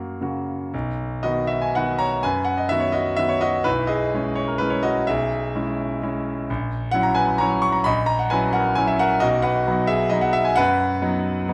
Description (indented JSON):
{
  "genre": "classical, piano waltz",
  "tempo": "109-138 BPM",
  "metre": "3/4",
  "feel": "rubato",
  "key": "B major",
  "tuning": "A4 = 441 Hz",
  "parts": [
    { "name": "bright concert grand piano", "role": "solo", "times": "0.0-11.5 s", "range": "A#1 to C#6", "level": "-22 LUFS", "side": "equal", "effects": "none" }
  ],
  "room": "moderate recital hall reverb, RT60 1.7 s",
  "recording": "close, detailed microphones",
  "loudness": "-22 LUFS",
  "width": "mono",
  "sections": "0.7-11.5 A section",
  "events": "none",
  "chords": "0.0 F#; 0.7 B; 6.5 F#7/A#; 9.2 B"
}